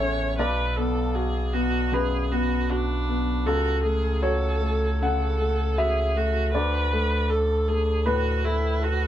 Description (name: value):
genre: neoclassical piano and strings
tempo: 78 BPM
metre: 4/4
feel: rubato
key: unclear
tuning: A4 = 440 Hz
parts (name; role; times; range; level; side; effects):
- clear upright piano; accompaniment; 0.0-9.1 s; B1 to F#5; -26 LUFS; left 2 dB; none
- rich viola; accompaniment; 0.0-9.1 s; D4 to C#5; -29 LUFS; right 3 dB; none
- warm sub bass; bass; 0.0-9.1 s; A1 to D2; -26 LUFS; equal; none
room: moderate small room ambience, RT60 0.5 s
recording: none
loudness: -22 LUFS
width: side -11 dB against mid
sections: 0.0-9.1 A section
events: none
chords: 0.4 Bm; 3.5 F#m/C#; 6.5 D5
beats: | 0.38 1.15 1.93 2.69 | 3.45 4.22 5.01 5.78 | 6.54 7.29 8.05 8.82